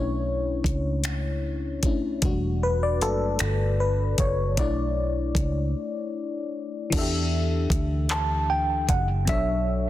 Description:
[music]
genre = slow six-eight R&B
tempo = 51 BPM (dotted quarters)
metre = 6/8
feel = straight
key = unclear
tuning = A4 = 440 Hz
[part]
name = FM electric piano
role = accompaniment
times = 0.0-9.9 s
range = B2 to E5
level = -28 LUFS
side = left 4 dB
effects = chorus
[part]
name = vintage muted fingered electric bass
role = bass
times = 0.0-9.9 s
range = E1 to E2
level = -26 LUFS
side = right 1 dB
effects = none
[part]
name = smooth R&B drum kit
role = drums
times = 0.6-9.5 s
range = crash cymbal, finger snaps, handclaps, hi-hat, kick drum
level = -27 LUFS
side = equal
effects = soft clipping on snare
[part]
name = mellow tine electric piano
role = melody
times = 8.1-9.9 s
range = E5 to A5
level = -26 LUFS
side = right 2 dB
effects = medium stereo tremolo, tape echo
[sound]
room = light reverb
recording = dense, heavily limited modern master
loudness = -23 LUFS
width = side -14 dB against mid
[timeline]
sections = 0.0-6.9 A section; 6.9-9.9 B section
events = FM electric piano solo 0.0-6.9; break 5.8-6.9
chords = 0.0 Bm11; 2.2 Em11; 4.6 Bm11; 6.9 Em11; 9.3 Bm11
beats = 1.04 | 2.22 3.40 | 4.58 5.75 | 6.93 8.10 | 9.28

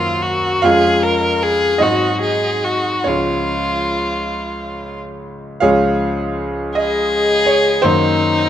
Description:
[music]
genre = classical, romantic duo for violin and grand piano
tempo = 45-56 BPM (dotted quarters)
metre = 6/8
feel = rubato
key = Db major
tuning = A4 = 440 Hz
[part]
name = rich violin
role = melody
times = 0.0-8.5 s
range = Eb4 to Bb4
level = -17 LUFS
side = left 2 dB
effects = none
[part]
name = bright grand piano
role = accompaniment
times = 0.0-8.5 s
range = Db2 to F5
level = -17 LUFS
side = right 1 dB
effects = none
[sound]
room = light reverb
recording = close, detailed microphones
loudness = -14 LUFS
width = side -10 dB against mid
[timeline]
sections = 0.0-5.6 A section; 5.6-8.5 B section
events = none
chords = 0.0 Ebm/Gb; 0.6 Db/F; 1.8 Ab7; 3.1 Db; 7.9 Ebm/Gb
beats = | 0.65 1.81 | 3.07 4.36 | 5.62 6.77 | 7.85

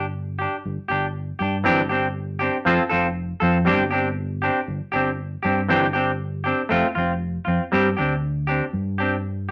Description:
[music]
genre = highlife guitar band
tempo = 119 BPM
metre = 4/4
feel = swing 54% on 16ths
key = unclear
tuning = A4 = 438 Hz
[part]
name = semi-hollow electric guitar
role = accompaniment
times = 0.0-9.5 s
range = E3 to A4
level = -23 LUFS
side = equal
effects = none
[part]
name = fingered electric bass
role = bass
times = 0.0-9.5 s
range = F1 to G2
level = -28 LUFS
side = equal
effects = none
[sound]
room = wet studio reverb, RT60 0.6 s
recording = none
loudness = -23 LUFS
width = mono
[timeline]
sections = 0.0-7.7 A section; 7.7-9.5 B section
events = none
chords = 0.0 G5; 1.7 Cadd9/G; 2.7 F; 3.7 Gsus4; 5.7 Cadd9/G; 6.7 F; 7.7 Gsus4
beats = 0.14 0.65 1.15 | 1.65 2.16 2.66 3.17 | 3.67 4.18 4.68 5.19 | 5.69 6.20 6.71 7.21 | 7.72 8.23 8.73 9.24

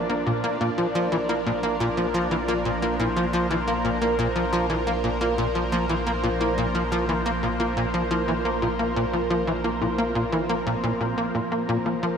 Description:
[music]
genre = ambient, sequencer-driven space music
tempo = 88 BPM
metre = 4/4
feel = straight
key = Bb lydian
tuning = A4 = 440 Hz
[part]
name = lush unison pad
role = sustained chords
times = 0.0-12.2 s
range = F3 to D5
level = -26 LUFS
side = right 1 dB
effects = chorus, phaser, shimmer reverb
[part]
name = warm sub bass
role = bass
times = 0.0-12.2 s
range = Bb1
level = -34 LUFS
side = equal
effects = none
[part]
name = warbly dusty pluck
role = arpeggios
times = 0.1-12.0 s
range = Bb2 to Bb4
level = -32 LUFS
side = left 3 dB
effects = chorus, auto-pan, cassette tape, ping-pong delay, shimmer reverb
[part]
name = tight sequencer bass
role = riff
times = 0.1-12.2 s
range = Bb2 to Bb3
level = -25 LUFS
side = equal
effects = wide subtle chorus, ping-pong delay, shimmer reverb
[sound]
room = wet concert hall reverb, RT60 2.2 s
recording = none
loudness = -22 LUFS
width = side -7 dB against mid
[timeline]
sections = 0.0-12.2 A section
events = none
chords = 0.0 Bb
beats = | 0.44 1.12 1.80 2.49 | 3.17 3.85 4.53 5.21 | 5.89 6.58 7.26 7.94 | 8.62 9.30 9.99 10.67 | 11.35 12.03

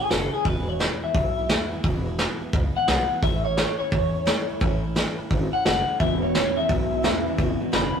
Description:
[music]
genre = rockabilly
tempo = 173 BPM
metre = 4/4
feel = swing 65% on 8ths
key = E major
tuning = A4 = 439 Hz
[part]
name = electric guitar through a small old amp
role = melody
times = 0.0-7.9 s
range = G#4 to B5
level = -25 LUFS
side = left 2 dB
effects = phaser
[part]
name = picked steel-string acoustic guitar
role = accompaniment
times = 0.0-8.0 s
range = E2 to E4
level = -32 LUFS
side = equal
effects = none
[part]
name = upright bass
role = bass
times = 0.1-8.0 s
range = E1 to E2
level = -28 LUFS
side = equal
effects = none
[part]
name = vintage brush drum kit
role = drums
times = 0.1-7.8 s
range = hi-hat, kick drum, snare drum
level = -25 LUFS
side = right 1 dB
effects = none
[part]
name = electric guitar through a small old amp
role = riff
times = 6.0-8.0 s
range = E2 to C#3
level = -27 LUFS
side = equal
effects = spring reverb
[sound]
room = light reverb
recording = rough rehearsal-room recording, tube saturation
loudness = -21 LUFS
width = side -7 dB against mid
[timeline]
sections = 0.0-8.0 A section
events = clean electric guitar solo 0.0-8.0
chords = 0.5 E; 3.2 A; 6.0 E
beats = 0.11 | 0.46 0.80 1.15 1.50 | 1.84 2.19 2.54 2.88 | 3.23 3.58 3.92 4.27 | 4.62 4.96 5.31 5.66 | 6.00 6.35 6.70 7.04 | 7.39 7.73

